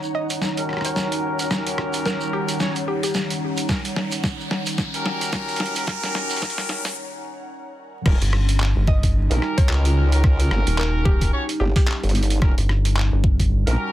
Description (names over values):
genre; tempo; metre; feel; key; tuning
glitch hop; 110 BPM; 4/4; swing 58% on 16ths; unclear; A4 = 442 Hz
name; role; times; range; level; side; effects
dark analog pad; sustained chords; 0.0-13.9 s; Eb3 to F#5; -30 LUFS; equal; chorus, phaser, sidechain pumping
shekere; percussion; 0.0-6.9 s; none; -33 LUFS; right 4 dB; none
riser; sound effects; 1.4-7.0 s; none; -32 LUFS; equal; none
ethereal airy pad; texture; 0.0-7.0 s; Eb4 to Bb5; -31 LUFS; right 1 dB; ensemble chorus, built-in reverb, sidechain pumping
woody wave-folded pluck; melody; 0.1-3.1, 8.9-11.8 s; G4 to Eb5; -30 LUFS; left 1 dB; chorus, digital delay
boom bap sampler-style drum kit; drums; 0.3-13.8 s; crash cymbal, handclaps, hi-hat, rim click, snare drum; -27 LUFS; equal; overdrive
clear horn section; stabs; 0.6-13.9 s; Db4 to Db5; -28 LUFS; left 1 dB; sidechain pumping, low-pass filter, digital delay
electronic kick drum; drums; 3.7-13.5 s; none; -19 LUFS; equal; overdrive
formant-sweep wobble bass; bass; 8.1-13.8 s; Eb1 to Db2; -18 LUFS; equal; chorus, tube saturation
rubbery square bass; bass; 8.2-13.6 s; Eb1 to G1; -19 LUFS; equal; tube saturation
room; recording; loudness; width
light reverb; dense, heavily limited modern master, vinyl crackle, high-pass filter; -19 LUFS; side -14 dB against mid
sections
0.0-8.1 A section; 8.1-13.9 B section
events
build-up 0.0-8.1; drum fill 0.0-7.0; filter sweep on horn section 0.0-8.1; filter sweep 0.0-8.1; riser 1.4-7.0; break 7.0-8.1; drop 8.1-13.9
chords
0.0 Eb7#9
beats
0.42 0.97 | 1.51 2.06 2.60 3.15 | 3.69 4.24 4.78 5.33 | 5.88 6.42 6.97 7.51 | 8.06 8.60 9.15 9.69 | 10.24 10.78 11.33 11.88 | 12.42 12.97 13.51